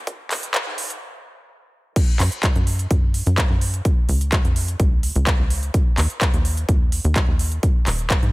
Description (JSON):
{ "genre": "progressive house", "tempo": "127 BPM", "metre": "4/4", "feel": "straight", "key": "unclear", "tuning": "A4 = 444 Hz", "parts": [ { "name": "tight sequencer bass", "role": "bass", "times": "0.0-8.3 s", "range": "Eb1 to Ab2", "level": "-21 LUFS", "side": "equal", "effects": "sidechain pumping, high-pass filter" }, { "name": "big-room dance drum kit", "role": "drums", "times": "0.1-8.3 s", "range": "crash cymbal, handclaps, hi-hat", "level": "-25 LUFS", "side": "equal", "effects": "small room ambience" }, { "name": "electronic kick drum", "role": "drums", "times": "0.1-8.2 s", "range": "none", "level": "-18 LUFS", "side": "equal", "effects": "high-pass filter on kick, small room ambience" } ], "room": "little or no reverb", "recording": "high-pass filter", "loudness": "-18 LUFS", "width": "side -21 dB against mid", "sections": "0.0-2.0 A section; 2.0-8.3 B section", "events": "build-up 0.0-2.0; filter sweep 0.0-2.0; stop 1.0-2.0; drop 2.0-8.3", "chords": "none" }